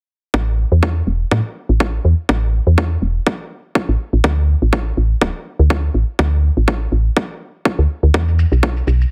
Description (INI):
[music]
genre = afro house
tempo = 123 BPM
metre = 4/4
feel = swing 56% on 16ths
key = unclear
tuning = A4 = 439 Hz
[part]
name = woody FM bass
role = bass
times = 0.3-9.1 s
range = D1 to A2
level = -16 LUFS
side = equal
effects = tube saturation, sidechain pumping
[part]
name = electronic kick drum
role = drums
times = 0.3-8.7 s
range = none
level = -21 LUFS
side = equal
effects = overdrive, high-pass filter on kick, small room ambience, high-pass filter on room
[part]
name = shaker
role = drums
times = 8.1-9.1 s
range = none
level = -39 LUFS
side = equal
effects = overdrive, low-pass filter on perc, small room ambience
[sound]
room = little or no reverb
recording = heavily compressed radio sound, multiband compression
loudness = -17 LUFS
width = mono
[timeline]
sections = 0.3-9.1 A section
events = none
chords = none